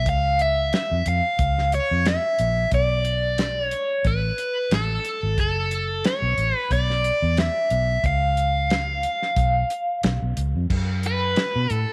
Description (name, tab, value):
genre	straight-eighth soul blues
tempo	90 BPM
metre	4/4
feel	swing 55% on 16ths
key	unclear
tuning	A4 = 440 Hz
part	overdriven electric guitar	melody	0.0-11.9 s	A4 to E#5	-25 LUFS	equal	phaser
part	vintage muted fingered electric bass	bass	0.0-11.8 s	F#1 to B2	-26 LUFS	equal	none
part	warm soul drum kit	drums	0.1-11.9 s	crash cymbal, hi-hat, kick drum, snare drum	-28 LUFS	equal	none
room	moderate spring reverb, RT60 2.5 s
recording	none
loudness	-22 LUFS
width	mono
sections	0.0-10.7 A section; 10.7-11.9 B section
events	overdriven electric guitar solo 10.7-11.9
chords	0.1 C#; 2.7 Bm7; 5.4 F#m; 6.7 Bm; 8.0 C#7; 10.7 N.C.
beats	| 0.06 0.73 1.39 2.06 | 2.72 3.38 4.05 4.71 | 5.38 6.04 6.71 7.37 | 8.04 8.70 9.37 10.04 | 10.70 11.37